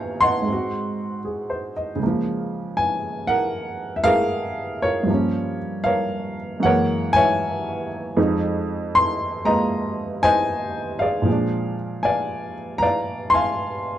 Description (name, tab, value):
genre	solo jazz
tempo	78 BPM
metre	4/4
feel	swing 67% on 8ths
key	Db major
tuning	A4 = 440 Hz
part	clear upright piano	solo	0.0-14.0 s	F2 to C6	-20 LUFS	equal	none
room	moderate studio reverb, RT60 0.5 s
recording	dark, warm production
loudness	-20 LUFS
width	side -11 dB against mid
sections	0.0-2.0 A section; 2.0-14.0 B section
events	none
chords	0.5 Ab7; 2.0 Db6; 5.1 Gm7b5; 6.6 Gb9; 8.2 Fm7; 11.3 Bb7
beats	0.47 1.24 | 2.01 2.78 3.55 4.32 | 5.09 5.86 6.63 7.40 | 8.18 8.95 9.72 10.49 | 11.27 12.04 12.81 13.59